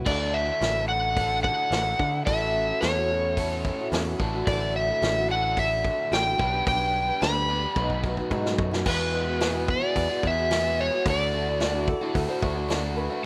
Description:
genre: folk rock and heartland rock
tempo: 109 BPM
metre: 4/4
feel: straight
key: unclear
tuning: A4 = 437 Hz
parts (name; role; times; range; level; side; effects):
- picked acoustic archtop guitar; accompaniment; 0.0-13.3 s; E2 to B4; -35 LUFS; equal; none
- overdriven electric guitar; riff; 0.0-13.3 s; E2 to B4; -35 LUFS; equal; spring reverb
- overdriven slide guitar; melody; 0.1-12.1 s; B4 to B5; -28 LUFS; equal; slapback echo
- picked electric bass; bass; 0.1-13.1 s; A1 to D3; -33 LUFS; equal; none
- vintage drum kit; drums; 0.1-12.8 s; crash cymbal, hi-hat, kick drum, snare drum; -33 LUFS; equal; none
- warm upright piano; second line; 11.9-13.2 s; E4 to D5; -35 LUFS; equal; slapback echo
room: studio reverb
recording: rough home demo mix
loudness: -25 LUFS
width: mono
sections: 0.1-8.9 A section; 8.9-13.3 B section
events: drum fill 7.8-8.9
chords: 0.1 Dadd9; 2.3 A6; 4.2 Dadd9/A; 6.4 G/B; 7.8 B7; 8.9 Eadd9; 11.1 Dadd9

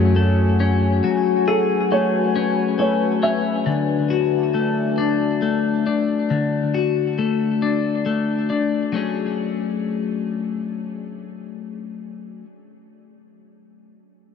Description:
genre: rock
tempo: 46 BPM (dotted quarters)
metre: 6/8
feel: straight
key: F# minor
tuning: A4 = 440 Hz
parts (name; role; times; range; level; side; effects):
- deep dark ambient pad; sustained chords; 0.0-6.3 s; F#4 to A5; -26 LUFS; left 3 dB; chorus, built-in reverb
- felt-muted upright piano; arpeggios; 0.0-3.7 s; G#4 to E5; -26 LUFS; right 4 dB; digital delay
- twelve-string electric guitar; arpeggios; 0.0-12.5 s; D3 to G#4; -20 LUFS; left 5 dB; digital delay
- growling fingered electric bass; bass; 0.0-1.0 s; F#2; -17 LUFS; equal; overdrive
room: moderate huge ambient reverb, RT60 8.4 s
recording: none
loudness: -18 LUFS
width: side -6 dB against mid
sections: 0.0-8.9 A section; 8.9-11.6 B section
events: none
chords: 0.0 F#madd9; 3.7 Dadd9; 8.9 F#madd9

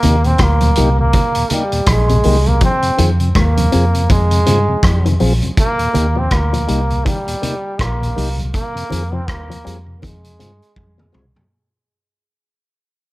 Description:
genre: roots reggae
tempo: 81 BPM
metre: 4/4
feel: swing 59% on 16ths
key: Eb major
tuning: A4 = 441 Hz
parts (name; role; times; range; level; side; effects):
- bright trombone; melody; 0.0-11.1 s; G3 to C4; -19 LUFS; right 1 dB; tape echo
- mellow tonewheel organ; accompaniment; 0.0-11.4 s; Eb2 to Ab4; -22 LUFS; left 1 dB; slow rotary speaker
- electric guitar with an envelope filter; arpeggios; 0.0-11.3 s; Ab2 to G3; -23 LUFS; left 4 dB; none
- vintage muted fingered electric bass; bass; 0.0-11.3 s; Bb1 to G2; -15 LUFS; equal; none
- vintage drum kit; drums; 0.0-11.5 s; hi-hat, kick drum, rim click, toms; -19 LUFS; equal; none
- congas; percussion; 0.0-11.5 s; none; -25 LUFS; right 4 dB; none
room: light reverb, small room ambience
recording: none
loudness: -13 LUFS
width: side -18 dB against mid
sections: 0.0-5.6 A section; 5.6-11.5 B section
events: fade-out 5.6-11.5; drum fill 10.8-11.5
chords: 0.0 Eb; 2.6 Fm; 5.6 Eb; 8.5 Fm

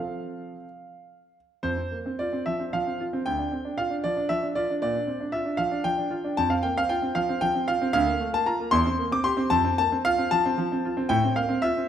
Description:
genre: classical-period piano sonatina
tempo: 76 BPM (dotted quarters)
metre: 6/8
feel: rubato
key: F major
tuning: A4 = 440 Hz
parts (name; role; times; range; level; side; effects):
- clear grand piano; solo; 0.0-11.9 s; D2 to D6; -23 LUFS; equal; none
room: moderate recital hall reverb, RT60 1.6 s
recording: none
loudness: -23 LUFS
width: side -9 dB against mid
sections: 0.0-1.6 A section; 1.6-11.9 A section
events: none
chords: 0.0 F; 1.6 F5; 3.3 Dm; 4.8 Bb (rootless); 6.4 F5; 8.0 Bb/D; 8.7 C7/E; 9.5 F; 11.1 F/A

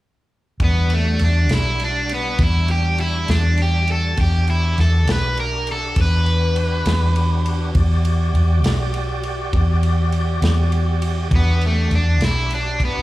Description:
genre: slow blues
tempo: 67 BPM (dotted quarters)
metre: 12/8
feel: straight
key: E minor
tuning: A4 = 440 Hz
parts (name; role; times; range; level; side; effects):
- cranked stack guitar; melody; 0.6-13.0 s; A3 to B4; -22 LUFS; equal; overdrive, slapback echo
- tonewheel organ; sustained chords; 0.6-13.0 s; G3 to D5; -29 LUFS; right 1 dB; chorus vibrato, fast rotary speaker
- vintage muted fingered electric bass; bass; 0.6-13.0 s; B1 to E2; -17 LUFS; equal; none
- warm soul drum kit; drums; 0.6-12.9 s; kick drum, ride cymbal, snare drum; -26 LUFS; equal; none
room: studio reverb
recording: live gig heard through the venue's PA, club reverb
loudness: -16 LUFS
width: side -17 dB against mid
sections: 0.6-13.0 A section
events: overdriven electric guitar solo 0.6-13.0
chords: 0.6 Em7

